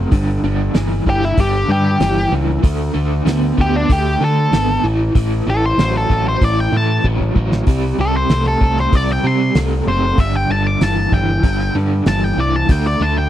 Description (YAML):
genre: classic rock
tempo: 95 BPM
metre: 4/4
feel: straight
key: unclear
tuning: A4 = 440 Hz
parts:
  - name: overdriven electric guitar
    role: riff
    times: 0.0-13.3 s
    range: G2 to B3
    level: -19 LUFS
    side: equal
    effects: tremolo
  - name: growling picked electric bass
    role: bass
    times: 0.0-13.3 s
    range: F#1 to D3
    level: -18 LUFS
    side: equal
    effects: overdrive
  - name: damped 70s drum kit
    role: drums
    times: 0.1-12.8 s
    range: hi-hat, kick drum, snare drum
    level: -15 LUFS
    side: equal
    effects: none
  - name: octave-fuzz lead guitar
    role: melody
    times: 1.1-13.3 s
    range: D4 to D6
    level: -19 LUFS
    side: left 1 dB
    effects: distortion, slapback echo
room: studio reverb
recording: dry, close 1970s-style studio recording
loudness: -14 LUFS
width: side -12 dB against mid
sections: 0.0-13.3 A section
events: lead electric guitar solo 0.0-13.3; drum fill 7.0-7.7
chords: 0.1 G5; 2.6 D5; 4.8 A5; 7.7 C5; 10.2 G5; 12.7 D5